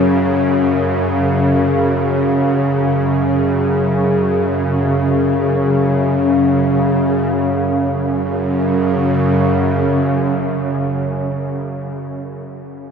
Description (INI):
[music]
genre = ambient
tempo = free time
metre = none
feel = none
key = unclear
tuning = A4 = 440 Hz
[part]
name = bowed-like drone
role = solo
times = 0.0-11.6 s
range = F#2 to C#3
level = -14 LUFS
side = equal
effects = built-in reverb, ping-pong delay
[sound]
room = wet huge ambient reverb, RT60 9.3 s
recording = in a vast, echoing space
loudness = -14 LUFS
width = side -6 dB against mid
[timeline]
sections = 0.0-7.3 A section; 7.3-12.1 B section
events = none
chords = 0.0 F#5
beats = free time